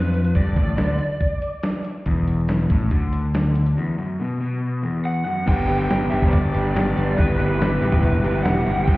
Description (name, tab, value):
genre	indie rock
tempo	141 BPM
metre	4/4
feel	straight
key	unclear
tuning	A4 = 440 Hz
part	lead guitar through a small cranked amp	melody	0.0-1.8, 5.1-9.0 s	B4 to G5	-27 LUFS	right 1 dB	overdrive, slapback echo
part	crunchy overdriven guitar	riff	0.0-9.0 s	E2 to G4	-23 LUFS	left 2 dB	none
part	modern bright picked electric bass	bass	0.0-9.0 s	E1 to F2	-22 LUFS	equal	none
part	clean 12-bit digital drum machine	drums	0.1-9.0 s	crash cymbal, hi-hat, kick drum, snare drum	-22 LUFS	equal	overdrive
part	crunchy overdriven guitar	riff	5.7-8.9 s	G3 to G4	-27 LUFS	right 5 dB	ensemble chorus, slapback echo
room	light reverb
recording	heard muffled through a wall, stone room reverb, EQ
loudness	-18 LUFS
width	side -19 dB against mid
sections	0.0-5.5 A section; 5.5-9.0 B section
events	break 3.8-5.5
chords	0.0 G5; 2.1 E5; 5.5 G; 7.2 Em/G